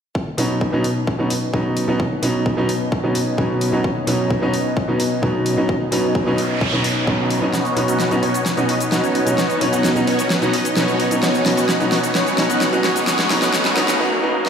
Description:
EDM, festival progressive house; 130 BPM; 4/4; straight; B major; A4 = 440 Hz
lush unison pad; sustained chords; 0.1-14.0 s; B2 to D#4; -24 LUFS; left 1 dB; chorus, sidechain pumping
electronic kick drum; drums; 0.2-7.2 s; -24 LUFS; left 1 dB; overdrive, high-pass filter on kick
clear grand piano; accompaniment; 0.4-14.5 s; B2 to D#4; -20 LUFS; right 1 dB; sidechain pumping, dub echo
pop drum kit; drums; 0.4-14.5 s; cabasa, hi-hat, snare drum; -23 LUFS; left 1 dB
noise sweep, riser and swell; sound effects; 6.1-14.5 s; -28 LUFS; right 1 dB
big supersaw lead; riff; 7.5-14.0 s; B3 to F#5; -20 LUFS; equal; phaser, sidechain pumping, low-pass filter, dub echo
wet lush hall reverb, RT60 2.1 s; played on a big sound system in a bare room, stone room reverb, high-pass filter; -16 LUFS; side -7 dB against mid
0.2-7.5 A section; 7.5-14.5 B section
filter sweep on analog synth pad 0.2-7.5; noise sweep 6.1-7.5; build-up 7.5-14.5; drum fill 7.5-14.0; filter sweep on supersaw synth 7.5-14.5; filter sweep 7.5-14.5; break 14.0-14.5; swell 14.0-14.5
0.2 Badd9

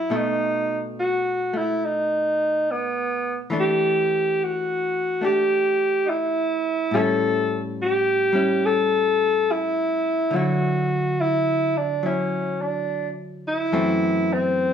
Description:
jazz; 70 BPM; 4/4; swing 66% on 8ths; D major; A4 = 436 Hz
breathy alto saxophone; melody; 0.0-14.7 s; B3 to A4; -21 LUFS; equal
archtop guitar, miked and amplified; accompaniment; 0.0-14.7 s; F#2 to G4; -26 LUFS; left 1 dB
light reverb; small room ambience; -20 LUFS; side -8 dB against mid
0.0-14.7 A section
0.1 B7; 3.5 Em11; 6.9 A7; 10.3 Dadd9; 13.7 F#m7b5

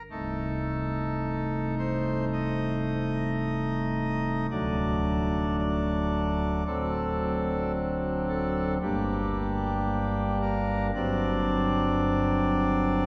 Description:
classical, chorale-style piece for pipe organ; 56 BPM; 4/4; rubato; A4 = 441 Hz
pipe organ, cornet; solo; 0.0-13.0 s; C1 to Eb5; -28 LUFS; equal
wet cathedral reverb, RT60 5.4 s; heard from further back in the room; -28 LUFS; mono
0.1-13.1 A section
0.1 Adim/C; 4.5 D; 6.7 D7; 8.8 Gm; 11.0 D7/G

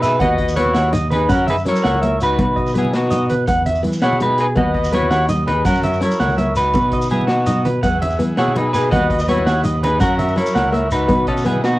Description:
highlife guitar band; 110 BPM (dotted quarters); 12/8; straight; A4 = 438 Hz
clean electric guitar; melody; 0.0-11.8 s; B3 to D#5; -20 LUFS; left 1 dB; analog chorus, plate reverb
breathy trumpet; second line; 0.0-11.8 s; D#4 to B4; -27 LUFS; right 1 dB; cassette tape, plate reverb
nylon-string guitar; accompaniment; 0.0-11.7 s; G#3 to D#4; -25 LUFS; left 2 dB; cassette tape, plate reverb
electric guitar through a small old amp; arpeggios; 0.0-11.6 s; G#4 to F#5; -22 LUFS; right 1 dB; cassette tape, plate reverb
bell-like tine electric piano; bass; 0.0-11.8 s; C#2 to F#3; -21 LUFS; equal
vintage drum kit; drums; 0.0-11.7 s; hi-hat, kick drum, snare drum; -25 LUFS; equal; cassette tape
congas; percussion; 0.0-11.6 s; -24 LUFS; right 1 dB
shekere; percussion; 0.0-11.7 s; -31 LUFS; right 1 dB
combo organ; sustained chords; 7.8-11.8 s; G#4 to F#5; -33 LUFS; equal
light reverb; home recording on cassette; -14 LUFS; side -17 dB against mid
0.0-11.8 A section
0.2 B/D#; 1.3 F#7; 2.4 B; 3.5 Eadd9; 4.6 B/D#; 5.7 F#7; 6.7 B; 7.8 Eadd9; 8.9 B/D#; 10.0 F#7; 11.1 B

